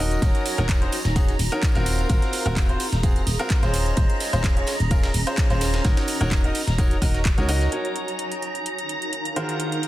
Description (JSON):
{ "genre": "piano house", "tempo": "128 BPM", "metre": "4/4", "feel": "swing 54% on 16ths", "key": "unclear", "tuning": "A4 = 440 Hz", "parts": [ { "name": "bright upright piano", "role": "riff", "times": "0.0-9.9 s", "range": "Eb3 to Eb5", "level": "-28 LUFS", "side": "equal", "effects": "sidechain pumping, dub echo" }, { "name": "solid FM bass", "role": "bass", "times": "0.0-7.7 s", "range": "Eb1 to Db2", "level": "-23 LUFS", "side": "equal", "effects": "sidechain pumping" }, { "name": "granular cloud pad", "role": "texture", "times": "0.0-9.9 s", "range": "Db4 to Bb5", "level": "-32 LUFS", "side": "right 1 dB", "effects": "built-in reverb, sidechain pumping" }, { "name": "house drum kit", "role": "drums", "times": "0.1-9.9 s", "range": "handclaps, hi-hat", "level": "-31 LUFS", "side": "right 2 dB", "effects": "none" }, { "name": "tambourine", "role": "percussion", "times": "0.1-7.7 s", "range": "none", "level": "-38 LUFS", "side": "right 3 dB", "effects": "none" }, { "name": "string machine, violins", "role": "sustained chords", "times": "0.2-9.9 s", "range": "Bb5", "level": "-32 LUFS", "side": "equal", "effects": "ensemble chorus, sidechain pumping" }, { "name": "breakbeat sampler-style drum kit", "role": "drums", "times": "0.2-7.7 s", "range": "hi-hat, ride cymbal, snare drum", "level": "-36 LUFS", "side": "right 2 dB", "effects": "none" }, { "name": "electronic kick drum", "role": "drums", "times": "0.2-7.4 s", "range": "none", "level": "-21 LUFS", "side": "equal", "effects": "none" } ], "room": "little or no reverb", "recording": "dense, heavily limited modern master", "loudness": "-20 LUFS", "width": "side -15 dB against mid", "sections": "0.0-7.7 A section; 7.7-9.9 B section", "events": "none", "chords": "0.2 Ab13/Eb; 3.7 Dbmaj7/Eb; 5.8 Gb6/Eb; 9.4 Ab13/Eb" }